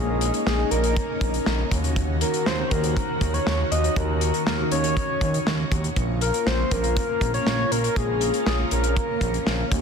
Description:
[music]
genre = synth-pop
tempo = 120 BPM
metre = 4/4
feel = straight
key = Bb minor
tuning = A4 = 440 Hz
[part]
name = soft octave-layered synth lead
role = melody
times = 0.0-9.7 s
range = Ab4 to Eb5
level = -26 LUFS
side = left 1 dB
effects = chorus, tape echo, shimmer reverb
[part]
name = ensemble organ-string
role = sustained chords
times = 0.0-9.8 s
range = Eb3 to Gb4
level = -28 LUFS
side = equal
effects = phaser, ensemble chorus, shimmer reverb
[part]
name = smooth gliding synth bass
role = bass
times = 0.0-9.8 s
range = Bb1 to Eb2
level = -26 LUFS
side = right 1 dB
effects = none
[part]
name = modern studio drum kit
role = drums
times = 0.2-9.8 s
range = hi-hat, kick drum, snare drum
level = -26 LUFS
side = equal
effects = none
[sound]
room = moderate lush hall reverb, RT60 2.0 s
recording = dense, heavily limited modern master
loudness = -20 LUFS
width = side -6 dB against mid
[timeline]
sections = 0.0-9.8 A section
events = none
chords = 0.0 Bbm; 1.7 Ebm7; 6.0 Bbm

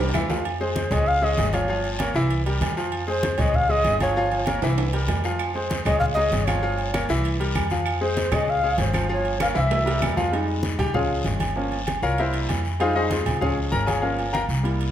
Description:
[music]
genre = latin, salsa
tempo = 194 BPM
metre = 4/4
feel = straight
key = F minor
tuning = A4 = 444 Hz
[part]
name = bright baby grand piano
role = accompaniment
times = 0.0-14.9 s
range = E3 to Bb5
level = -26 LUFS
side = left 1 dB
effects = none
[part]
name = upright bass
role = bass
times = 0.0-14.9 s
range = G1 to F2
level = -26 LUFS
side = equal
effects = none
[part]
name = congas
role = percussion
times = 0.0-14.9 s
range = none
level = -29 LUFS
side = left 1 dB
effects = none
[part]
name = claves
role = percussion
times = 0.1-0.3, 5.4-10.2 s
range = none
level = -36 LUFS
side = right 5 dB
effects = none
[part]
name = guiro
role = percussion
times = 0.1-14.9 s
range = none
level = -36 LUFS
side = left 5 dB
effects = none
[part]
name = timbales and agogo bells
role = percussion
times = 0.1-14.9 s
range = none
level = -30 LUFS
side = right 4 dB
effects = none
[part]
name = mellow long shakuhachi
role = melody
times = 0.6-10.1 s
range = C5 to F5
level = -24 LUFS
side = equal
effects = none
[sound]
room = moderate large studio reverb, RT60 1.3 s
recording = none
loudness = -20 LUFS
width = side -10 dB against mid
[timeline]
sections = 0.5-10.3 A section; 10.3-14.9 B section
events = drum fill 0.0-0.5, 4.6-5.4, 9.4-10.3; grand piano solo 10.3-14.9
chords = 0.5 Fm; 1.1 Db; 1.7 Gm7b5; 2.3 C7; 2.9 Fm; 3.5 Db; 4.2 Gm7b5; 4.8 C7; 5.4 Fm; 6.0 Db; 6.6 Gm7b5; 7.2 C7; 7.9 Fm; 8.5 Db; 9.1 Gm7b5; 9.7 C7; 10.3 Fm7; 10.9 Db; 11.6 Gm7b5; 12.2 C7; 12.8 Fm7; 13.4 Db; 14.0 Gm7b5

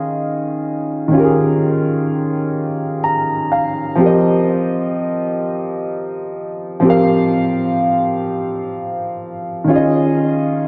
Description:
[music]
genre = R&B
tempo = 42 BPM (dotted quarters)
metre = 6/8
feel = straight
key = F minor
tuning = A4 = 436 Hz
[part]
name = warm concert grand piano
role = solo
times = 0.0-10.7 s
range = Eb3 to Bb5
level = -18 LUFS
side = equal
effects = subtle chorus, delay
[sound]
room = wet lush hall reverb, RT60 2.1 s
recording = dreamy mix soaked in reverb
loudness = -17 LUFS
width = mono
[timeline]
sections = 0.0-10.7 A section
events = grand piano fill 2.6-4.0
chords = 0.0 Eb9sus4; 4.0 F9sus4; 9.7 Eb9sus4

